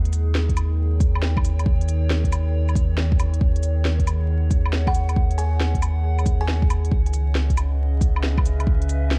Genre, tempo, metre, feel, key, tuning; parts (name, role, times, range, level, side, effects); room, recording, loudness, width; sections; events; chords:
future garage; 137 BPM; 4/4; swing 66% on 16ths; G# minor; A4 = 444 Hz
warbly tape-like pad; sustained chords; 0.0-9.2 s; C#3 to G5; -34 LUFS; equal; chorus, built-in reverb, phaser, sidechain pumping
warm sub bass; bass; 0.0-9.2 s; C#2 to D#2; -23 LUFS; equal
organic electronic drum kit; drums; 0.1-9.2 s; cabasa, hi-hat, snare drum, woodblock; -31 LUFS; equal; vintage 12-bit sampler grit
electronic kick drum; drums; 0.5-8.8 s; -24 LUFS; equal; vintage 12-bit sampler grit
buzzing kalimba; melody; 4.9-6.7 s; F#5 to G#5; -35 LUFS; equal; analog delay
little or no reverb; vinyl crackle; -21 LUFS; mono
0.0-9.2 A section
0.0 D#7; 3.4 G#7sus4/D#; 6.9 C#m7